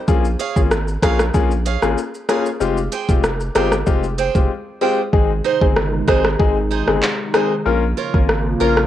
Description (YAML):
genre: dancehall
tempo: 95 BPM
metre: 4/4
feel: straight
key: unclear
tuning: A4 = 439 Hz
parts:
  - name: clear grand piano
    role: accompaniment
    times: 0.1-8.8 s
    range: Ab3 to Bb4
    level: -21 LUFS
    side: left 6 dB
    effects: sidechain pumping, cassette tape
  - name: saturated sub bass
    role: bass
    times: 0.1-8.9 s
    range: F1 to Bb1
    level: -22 LUFS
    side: right 1 dB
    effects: none
  - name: afro-pop drum kit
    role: drums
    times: 0.1-8.9 s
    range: handclaps, hi-hat, kick drum, rim click, shaker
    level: -18 LUFS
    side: equal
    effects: overdrive, cassette tape
  - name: picked acoustic archtop guitar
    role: arpeggios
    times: 0.4-8.8 s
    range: Eb4 to G5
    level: -22 LUFS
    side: right 8 dB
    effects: cassette tape
  - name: hollow soft pad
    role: sustained chords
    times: 5.4-8.9 s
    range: C3 to F4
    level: -25 LUFS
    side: right 1 dB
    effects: chorus, sidechain pumping, cassette tape
room: light reverb, digital ambience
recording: home recording on cassette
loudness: -15 LUFS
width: side -12 dB against mid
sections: 0.0-5.1 A section; 5.1-8.9 B section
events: break 4.5-5.1; hi-hats muted 5.1-8.9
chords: 0.1 Bbm7; 2.6 Fmadd9; 5.1 Ab; 7.7 Bbm